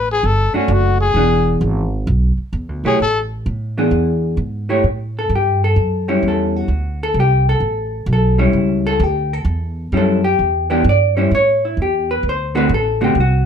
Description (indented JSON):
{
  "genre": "jazz",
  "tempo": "130 BPM",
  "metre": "4/4",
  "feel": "swing 66% on 8ths",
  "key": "A mixolydian",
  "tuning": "A4 = 439 Hz",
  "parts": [
    { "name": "clear trumpet", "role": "melody", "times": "0.0-3.2 s", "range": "C#4 to A4", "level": "-17 LUFS", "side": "left 4 dB", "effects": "none" },
    { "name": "upright bass", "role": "bass", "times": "0.0-13.5 s", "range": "E1 to A2", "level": "-18 LUFS", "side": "right 1 dB", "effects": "none" },
    { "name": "vintage hollow-body jazz guitar", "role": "accompaniment", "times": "0.5-13.5 s", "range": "D3 to D5", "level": "-16 LUFS", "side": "left 1 dB", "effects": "none" }
  ],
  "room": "moderate studio reverb, RT60 0.6 s",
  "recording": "none",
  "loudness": "-14 LUFS",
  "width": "side -8 dB against mid",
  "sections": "0.0-4.8 A section; 4.8-13.5 B section",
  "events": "none",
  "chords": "0.0 Bm7 (rootless); 1.2 E7; 3.0 A5; 3.9 E7; 4.8 A7; 6.7 D5; 8.5 A7; 10.4 Em7; 11.3 A5; 12.2 D7"
}